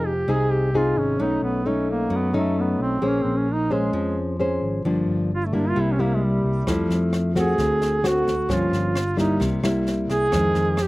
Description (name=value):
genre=bossa nova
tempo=131 BPM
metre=4/4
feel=straight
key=F minor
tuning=A4 = 440 Hz
part: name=warm duduk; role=melody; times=0.0-10.9 s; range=G3 to Ab4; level=-24 LUFS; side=right 2 dB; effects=none
part: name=nylon-string guitar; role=accompaniment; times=0.0-10.9 s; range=F2 to C5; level=-22 LUFS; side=left 1 dB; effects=none
part: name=fingered electric bass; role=bass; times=0.0-10.9 s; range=F1 to F#2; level=-27 LUFS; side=equal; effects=none
part: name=jazz brush drum kit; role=drums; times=6.7-10.9 s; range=kick drum, rim click, snare drum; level=-31 LUFS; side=equal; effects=none
room=little or no reverb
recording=recorded outdoors, with no room sound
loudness=-20 LUFS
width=side -19 dB against mid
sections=0.0-10.9 A section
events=duduk solo 0.0-10.9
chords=0.0 Fm7; 1.2 B9; 3.0 Bbm9; 4.8 Gm7; 5.8 C7; 6.7 Fmaj7; 7.6 D7; 8.5 Gm7b5; 9.4 C7; 10.3 Fm7